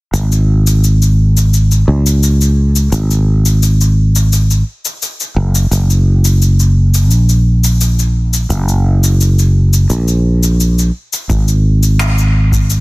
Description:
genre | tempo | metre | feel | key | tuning
sunset chillout | 86 BPM | 4/4 | straight | unclear | A4 = 443 Hz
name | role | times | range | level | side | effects
sustaining fretless electric bass | bass | 0.1-12.8 s | F#1 to C#2 | -9 LUFS | equal | none
electronic cabasa and finger snaps | drums | 0.1-12.8 s | none | -20 LUFS | left 3 dB | overdrive, soft clipping on snare
electronic kick drum | drums | 11.3-12.7 s | none | -15 LUFS | equal | none
room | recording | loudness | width
little or no reverb | dense, heavily limited modern master | -9 LUFS | side -22 dB against mid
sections
0.1-12.8 A section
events
none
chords
none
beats
| 0.14 0.83 1.53 2.23 | 2.93 3.62 4.32 5.02 | 5.72 6.42 7.11 7.81 | 8.51 9.21 9.90 10.60 | 11.30 12.00 12.69

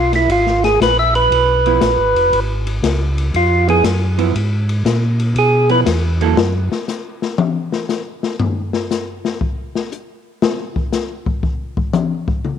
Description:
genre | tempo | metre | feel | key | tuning
soul jazz organ trio | 118 BPM | 4/4 | swing 67% on 8ths | Db mixolydian | A4 = 440 Hz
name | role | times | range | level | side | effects
percussive tonewheel organ | melody | 0.0-5.8 s | E4 to E5 | -15 LUFS | right 1 dB | slow rotary speaker
mellow tonewheel organ | bass | 0.0-6.7 s | F1 to Cb3 | -17 LUFS | equal | slow rotary speaker
open jazz drum kit | drums | 0.1-12.6 s | hi-hat, kick drum, ride cymbal, snare drum, toms | -20 LUFS | left 4 dB | none
vintage hollow-body jazz guitar | accompaniment | 1.7-6.4 s | F3 to A4 | -21 LUFS | right 14 dB | none
room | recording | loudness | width
light reverb, small room ambience | 1960s-style stereo | -14 LUFS | side -8 dB against mid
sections
0.0-12.6 A section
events
tonewheel organ solo 0.0-12.6; drum solo 6.4-12.6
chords
0.0 Db7#9; 6.4 N.C.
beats
| 0.29 0.80 1.30 1.81 | 2.32 2.82 3.33 3.84 | 4.34 4.85 5.36 5.86 | 6.37 6.87 7.38 7.89 | 8.39 8.90 9.40 9.91 | 10.41 10.92 11.43 11.93 | 12.44

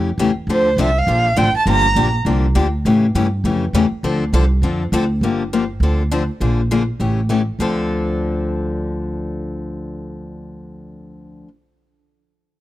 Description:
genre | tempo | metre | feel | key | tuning
acoustic string swing (jazz manouche) | 203 BPM | 4/4 | swing 60% on 8ths | D minor | A4 = 437 Hz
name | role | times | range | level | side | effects
picked steel-string acoustic guitar | accompaniment | 0.0-11.5 s | C#3 to A4 | -20 LUFS | left 4 dB | none
upright bass | bass | 0.0-11.4 s | G1 to A2 | -19 LUFS | right 1 dB | none
dark violin | melody | 0.5-2.1 s | C5 to Bb5 | -17 LUFS | right 3 dB | none
room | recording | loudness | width
small room ambience | dry, close 1970s-style studio recording | -15 LUFS | side -14 dB against mid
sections
0.0-5.2 A section; 5.2-7.6 B section; 7.6-10.0 C section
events
none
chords
0.5 Dm7; 1.7 Gm7; 2.9 A7b13; 4.0 Dm7; 5.2 Gm7; 5.8 Dm7; 6.4 Bb7; 7.0 A7; 7.6 Dm7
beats
0.19 | 0.49 0.78 1.08 1.37 | 1.67 1.96 2.26 2.56 | 2.85 3.15 3.44 3.74 | 4.04 4.33 4.63 4.92 | 5.22 5.51 5.81 6.11 | 6.41 6.70 7.00 7.30 | 7.59 7.89 8.19 8.48 | 8.78 9.08 9.38 9.68

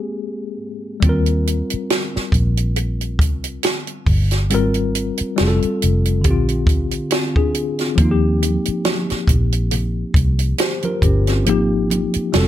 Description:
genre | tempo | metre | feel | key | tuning
R&B, neo-soul | 69 BPM | 4/4 | swing 55% on 16ths | unclear | A4 = 442 Hz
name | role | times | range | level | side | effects
tine electric piano | accompaniment | 0.0-12.5 s | D3 to C5 | -21 LUFS | left 3 dB | medium stereo tremolo
vintage muted fingered electric bass | bass | 1.0-12.5 s | F1 to Eb2 | -18 LUFS | equal | none
compact cocktail drum kit | drums | 1.0-12.5 s | hi-hat, kick drum, snare drum | -18 LUFS | right 1 dB | none
congas | percussion | 8.4-12.5 s | none | -27 LUFS | right 4 dB | none
room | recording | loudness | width
light reverb | none | -16 LUFS | side -12 dB against mid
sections
0.0-1.0 A section; 1.0-12.5 A section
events
break 0.0-1.0; tine electric piano solo 0.0-1.0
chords
0.0 Abmaj7; 1.0 Ebadd9; 4.5 Abmaj9; 5.4 Fadd9; 6.2 Bb; 8.0 Ebadd9; 11.5 Absus2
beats
0.16 | 1.03 1.90 2.77 3.64 | 4.51 5.38 6.25 7.12 | 7.98 8.85 9.72 10.59 | 11.46 12.33

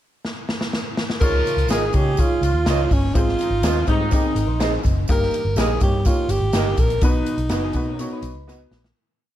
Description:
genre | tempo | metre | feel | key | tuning
uptempo 1960s-style soul | 124 BPM | 4/4 | straight | unclear | A4 = 441 Hz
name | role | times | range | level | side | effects
swinging big-band drum kit | drums | 0.2-9.0 s | crash cymbal, hi-hat, kick drum, snare drum | -22 LUFS | equal | none
warm tenor saxophone | melody | 1.2-8.5 s | Db4 to Bb4 | -23 LUFS | right 1 dB | plate reverb
mellow horn section | second line | 1.2-4.3 s | Eb3 to Ab4 | -29 LUFS | equal | none
dark upright piano | accompaniment | 1.2-8.8 s | G2 to Eb5 | -28 LUFS | left 2 dB | none
vintage muted picked electric bass | bass | 1.2-8.9 s | Gb1 to Db3 | -23 LUFS | equal | tube saturation
tambourine | percussion | 1.2-8.8 s | none | -39 LUFS | right 5 dB | none
electric guitar through a small old amp | stabs | 1.7-8.6 s | F4 to Eb5 | -28 LUFS | right 7 dB | none
electric guitar through a small old amp | riff | 3.9-8.8 s | G3 to C5 | -32 LUFS | left 4 dB | warbly pitch drift
room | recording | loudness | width
light reverb | dark, warm production | -18 LUFS | side -12 dB against mid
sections
0.0-1.2 pickup bar; 1.2-9.0 pre-chorus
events
drum fill 0.3-1.2, 8.5-9.0; fade-out 7.0-9.0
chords
0.0 N.C.; 1.2 Dbadd9; 3.2 Ab; 5.1 Eb/G; 7.0 B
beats
0.25 0.74 | 1.22 1.70 2.19 2.67 | 3.15 3.64 4.12 4.61 | 5.09 5.57 6.06 6.54 | 7.03 7.51 8.00 8.49

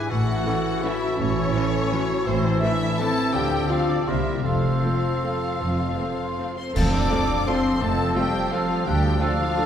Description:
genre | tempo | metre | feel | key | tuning
classical, orchestral ballroom waltz | 148-185 BPM | 3/4 | rubato | F major | A4 = 441 Hz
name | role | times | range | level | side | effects
rich studio violin section | melody | 0.0-9.7 s | C5 to D6 | -30 LUFS | left 3 dB | none
bright clarinet | second line | 0.0-9.7 s | C4 to E4 | -33 LUFS | left 1 dB | none
dark studio violin section | second line | 0.0-9.7 s | C4 to D5 | -32 LUFS | left 2 dB | none
mellow baroque flute | second line | 0.0-9.7 s | A5 to E6 | -33 LUFS | equal | none
warm oboe | second line | 0.0-9.7 s | A4 to B4 | -34 LUFS | right 1 dB | none
clear bassoon | accompaniment | 0.0-9.7 s | E3 to G3 | -33 LUFS | right 1 dB | none
mellow French horn section | sustained chords | 0.0-9.7 s | F3 to C5 | -29 LUFS | left 2 dB | none
concert harp | arpeggios | 0.0-9.7 s | G#2 to C6 | -30 LUFS | left 4 dB | none
warm studio cello section | bass | 0.1-9.1 s | D2 to D3 | -31 LUFS | right 2 dB | none
warm studio double bass section | bass | 0.1-9.1 s | F1 to D2 | -28 LUFS | right 2 dB | none
warm studio viola section | accompaniment | 0.5-9.6 s | E3 to F4 | -35 LUFS | right 1 dB | none
cymbal swell, clash cymbals and concert bass drum | percussion | 4.5-7.4 s | none | -28 LUFS | equal | none
dark trombone section | sustained chords | 7.1-9.7 s | F3 to D4 | -35 LUFS | right 4 dB | none
mellow trumpet section | stabs | 7.1-9.7 s | A4 | -32 LUFS | right 3 dB | none
room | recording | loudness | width
wet concert hall reverb, RT60 1.9 s | heard from further back in the room | -20 LUFS | side -9 dB against mid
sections
0.0-6.8 A section; 6.8-9.7 B section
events
band accent 6.8-7.1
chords
0.1 A; 2.3 Am; 3.3 Dm7; 4.1 C7; 4.5 F; 8.9 Dm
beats
| 0.10 0.47 0.84 | 1.19 1.55 1.92 | 2.27 2.62 3.00 | 3.34 3.70 4.08 | 4.45 4.84 5.24 | 5.61 5.99 6.38 | 6.75 7.10 7.47 | 7.81 8.16 8.52 | 8.86 9.20 9.56

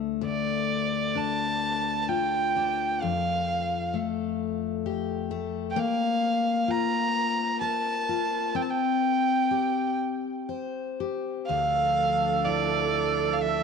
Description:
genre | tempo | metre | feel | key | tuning
celtic folk, Celtic slow air | 64 BPM | 3/4 | rubato | D minor | A4 = 440 Hz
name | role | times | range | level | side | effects
picked steel-string acoustic guitar | accompaniment | 0.0-13.6 s | D2 to C5 | -29 LUFS | left 9 dB | none
dark fiddle | melody | 0.3-13.6 s | D5 to Bb5 | -26 LUFS | right 3 dB | none
baroque flute | second line | 11.5-13.6 s | A4 | -29 LUFS | right 17 dB | slapback echo
muted studio string section | sustained chords | 11.5-13.6 s | F3 to A4 | -34 LUFS | right 3 dB | none
room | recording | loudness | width
moderate plate reverb, RT60 2.7 s | 1960s-style stereo with parts hard left and right | -24 LUFS | side -5 dB against mid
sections
0.2-11.5 A section; 11.5-13.6 B section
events
none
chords
0.2 Dm; 3.0 Fadd9; 5.8 Bb5; 8.6 C5; 11.5 Dmadd9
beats
| 0.21 1.15 2.09 | 3.03 3.94 4.85 | 5.77 6.68 7.61 | 8.55 9.50 10.48 | 11.48 12.45 13.41

